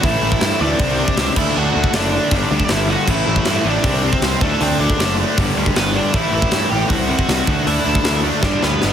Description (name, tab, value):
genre	punk rock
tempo	157 BPM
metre	4/4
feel	straight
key	unclear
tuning	A4 = 440 Hz
part	nasal lead guitar with a parked wah	melody	0.0-8.9 s	A3 to G5	-21 LUFS	equal	overdrive, digital delay
part	crunchy overdriven guitar	riff	0.0-8.9 s	G2 to D4	-26 LUFS	equal	none
part	distorted electric guitar	riff	0.0-8.9 s	G2 to D4	-24 LUFS	left 11 dB	distortion
part	distorted electric guitar	riff	0.0-8.9 s	G2 to D4	-23 LUFS	right 11 dB	overdrive
part	fuzz picked electric bass	bass	0.0-8.9 s	F#1 to G2	-21 LUFS	equal	overdrive
part	tight metal drum kit	drums	0.0-8.9 s	crash cymbal, hi-hat, kick drum, snare drum	-20 LUFS	equal	none
room	little or no reverb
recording	heavily compressed radio sound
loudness	-14 LUFS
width	side -9 dB against mid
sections	0.0-8.9 A section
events	drum fill 8.4-8.9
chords	0.0 A5; 0.8 C5; 1.4 D; 2.3 G5; 3.1 A5; 3.8 C5; 4.4 D; 5.4 G; 6.1 A5; 6.9 C5; 7.5 D; 8.4 G